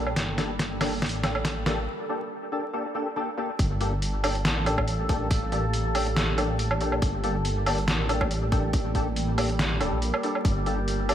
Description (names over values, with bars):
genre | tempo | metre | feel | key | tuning
deep dubstep | 140 BPM | 4/4 | swing 55% on 16ths, half-time | G minor | A4 = 439 Hz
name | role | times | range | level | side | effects
overtone-sweeping drone | sustained chords | 0.0-11.1 s | G3 to A4 | -33 LUFS | right 2 dB | chorus, built-in reverb
percussive organ stab | stabs | 0.0-11.1 s | Bb3 to A4 | -30 LUFS | left 2 dB | ensemble chorus, dub echo
dark detuned saw bass | bass | 0.0-11.1 s | D1 to Bb1 | -28 LUFS | equal | none
trip hop sampler-style drum kit | drums | 0.1-11.1 s | hi-hat, snare drum, woodblock | -28 LUFS | right 1 dB | studio reverb
electronic kick drum | drums | 0.2-10.5 s | none | -27 LUFS | equal | high-pass filter on kick, studio reverb, high-pass filter on room
room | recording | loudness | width
light reverb, digital ambience | vinyl crackle | -24 LUFS | side -10 dB against mid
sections
0.0-3.6 A section; 3.6-11.1 B section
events
build-up 0.0-3.6; drum fill 0.0-1.9; filter sweep on synth stab 0.0-3.6; break 1.9-3.6; drop 3.6-11.1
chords
0.0 Gmadd9